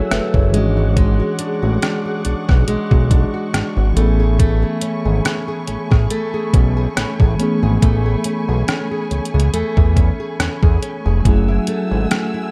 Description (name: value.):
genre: contemporary R&B.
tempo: 70 BPM.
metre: 4/4.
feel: swing 54% on 16ths.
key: A major.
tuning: A4 = 443 Hz.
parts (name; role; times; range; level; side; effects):
mellow tine electric piano; accompaniment; 0.0-12.5 s; E3 to E5; -26 LUFS; equal; none.
warm symphonic string section; sustained chords; 0.0-12.5 s; A3 to E6; -31 LUFS; equal; none.
flamenco guitar; arpeggios; 0.0-12.5 s; F#3 to G#4; -26 LUFS; equal; tape echo.
fat analog bass; bass; 0.0-12.1 s; F1 to E2; -19 LUFS; equal; none.
detuned 8-bit digital drum machine; drums; 0.1-12.3 s; hi-hat, kick drum, rim click; -18 LUFS; equal; none.
room: little or no reverb.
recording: dark, warm production.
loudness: -17 LUFS.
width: mono.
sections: 0.0-12.5 A section.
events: none.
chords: 0.0 F#m9; 0.5 E13/G#; 4.0 Amaj9; 11.3 F#m9.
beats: 0.11 | 0.97 1.82 2.68 3.54 | 4.39 5.25 6.11 6.97 | 7.82 8.68 9.54 10.39 | 11.25 12.11.